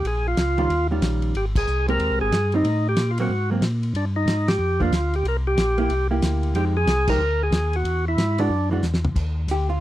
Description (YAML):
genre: soul jazz organ trio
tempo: 184 BPM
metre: 4/4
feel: swing 63% on 8ths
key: Eb major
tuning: A4 = 439 Hz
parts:
  - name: percussive tonewheel organ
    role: melody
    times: 0.0-8.7 s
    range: D4 to Bb4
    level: -23 LUFS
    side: right 1 dB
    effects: slow rotary speaker, overdrive
  - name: mellow tonewheel organ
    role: bass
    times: 0.0-9.8 s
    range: Ab1 to Bb2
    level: -23 LUFS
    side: equal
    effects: slow rotary speaker
  - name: warm soul drum kit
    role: drums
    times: 0.0-9.6 s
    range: crash cymbal, hi-hat, kick drum, ride cymbal, snare drum, toms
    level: -27 LUFS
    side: equal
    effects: none
  - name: vintage hollow-body jazz guitar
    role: accompaniment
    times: 0.6-9.8 s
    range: Eb3 to Bb4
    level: -25 LUFS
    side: right 2 dB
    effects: none
room: studio ambience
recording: dry, close 1970s-style studio recording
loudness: -19 LUFS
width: side -14 dB against mid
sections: 0.0-9.2 A section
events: band accent 1.5, 4.4, 7.0; drum fill 8.8-9.2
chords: 0.0 Eb9; 1.3 Abmaj9; 2.6 Adim7; 3.3 Ab9; 3.9 G7(no3); 5.2 C7; 6.6 Fm9; 7.9 E9; 9.2 Ebmaj7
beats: | 0.04 0.37 0.70 1.02 | 1.35 1.67 2.00 2.32 | 2.65 2.97 3.30 3.62 | 3.95 4.27 4.60 4.92 | 5.25 5.58 5.90 6.23 | 6.55 6.88 7.20 7.53 | 7.86 8.18 8.51 8.84 | 9.16 9.49